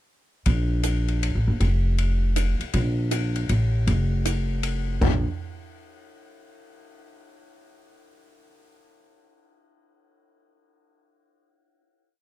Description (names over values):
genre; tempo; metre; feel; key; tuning
jazz piano trio; 158 BPM; 3/4; swing 64% on 8ths; unclear; A4 = 445 Hz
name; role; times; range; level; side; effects
upright bass; bass; 0.5-5.2 s; F1 to Bb1; -22 LUFS; equal; none
swinging big-band drum kit; drums; 0.5-5.1 s; crash cymbal, hi-hat, kick drum, ride cymbal, toms; -28 LUFS; equal; none
room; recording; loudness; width
little or no reverb; none; -21 LUFS; side -15 dB against mid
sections
0.5-5.0 A section; 5.0-6.2 final note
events
none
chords
none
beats
| 0.46 0.84 1.22 | 1.60 1.98 2.36 | 2.74 3.12 3.49 | 3.87 4.25 4.63 | 5.01